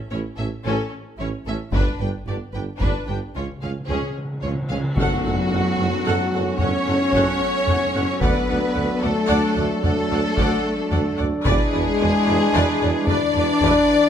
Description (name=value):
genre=cinematic, epic orchestral film score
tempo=74 BPM (dotted quarters)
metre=12/8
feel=straight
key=F# minor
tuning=A4 = 440 Hz
part: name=clear symphonic violin section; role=melody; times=0.1-14.1 s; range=F#4 to G5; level=-28 LUFS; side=left 4 dB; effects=none
part: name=clear symphonic violin section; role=second line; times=0.1-14.1 s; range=C#4 to D5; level=-31 LUFS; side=left 1 dB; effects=none
part: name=rich symphonic viola section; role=accompaniment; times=0.1-13.9 s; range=C#4 to F#5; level=-28 LUFS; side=equal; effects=none
part: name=rich studio cello section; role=bass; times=0.1-14.1 s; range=G2 to D4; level=-29 LUFS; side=right 1 dB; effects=none
part: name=rich symphonic double bass section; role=bass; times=0.1-13.7 s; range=G1 to F#2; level=-28 LUFS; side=right 2 dB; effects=none
part: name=warm tuba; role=bass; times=0.1-13.7 s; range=E1 to D2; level=-29 LUFS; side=right 4 dB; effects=none
part: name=dark French horn section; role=sustained chords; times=0.6-14.1 s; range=F#3 to A4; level=-25 LUFS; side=left 5 dB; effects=none
part: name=taiko ensemble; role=drums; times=1.7-14.1 s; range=none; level=-25 LUFS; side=equal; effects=none
part: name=cymbal swell and tam-tam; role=percussion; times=1.7-7.1 s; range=none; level=-34 LUFS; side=left 5 dB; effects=none
part: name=timpani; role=percussion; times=3.4-4.9 s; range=C#3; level=-29 LUFS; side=equal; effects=none
part: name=pipe organ, stopped flute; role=sustained chords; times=5.0-14.1 s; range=C#4 to F#5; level=-30 LUFS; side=right 1 dB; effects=none
part: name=warm trombone section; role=sustained chords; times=5.0-14.1 s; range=E3 to D4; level=-29 LUFS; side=right 4 dB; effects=none
part: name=mellow trumpet section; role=stabs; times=5.0-14.1 s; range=F#4 to D5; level=-28 LUFS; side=right 1 dB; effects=none
room=moderate recital hall reverb, RT60 1.5 s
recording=none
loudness=-19 LUFS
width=side -9 dB against mid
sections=0.0-5.0 A section; 5.0-14.1 B section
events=timpani fill 3.4-5.0; band accent 5.0-5.5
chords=0.0 A; 1.7 G; 3.4 C#; 5.0 F#m; 8.2 D; 11.5 E7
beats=0.11 0.92 | 1.73 2.54 3.35 4.17 | 4.98 5.79 6.60 7.41 | 8.22 9.03 9.84 10.65 | 11.46 12.27 13.08 13.89